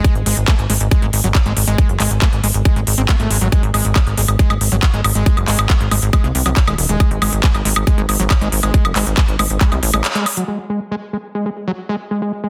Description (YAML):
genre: psychedelic trance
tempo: 138 BPM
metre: 4/4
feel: straight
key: unclear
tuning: A4 = 440 Hz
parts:
  - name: screaming distorted acid line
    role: riff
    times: 0.0-12.5 s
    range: F#3 to B#3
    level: -25 LUFS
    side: equal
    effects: distortion, chorus, sidechain pumping, tape echo
  - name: big-room dance drum kit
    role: drums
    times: 0.0-10.5 s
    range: handclaps, hi-hat, woodblock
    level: -22 LUFS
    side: equal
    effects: studio ambience
  - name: electronic kick drum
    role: drums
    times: 0.0-9.7 s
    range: none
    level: -16 LUFS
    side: equal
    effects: overdrive, studio ambience
  - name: plucky analog bass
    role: bass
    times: 0.2-10.0 s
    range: D#1 to B#1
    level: -20 LUFS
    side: equal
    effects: none
room: light reverb, digital ambience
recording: dense, heavily limited modern master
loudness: -16 LUFS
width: mono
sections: 0.0-10.5 A section; 10.5-12.5 B section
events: kick drops out 10.0-10.5; band accent 10.0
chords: 0.0 G#5; 10.5 N.C.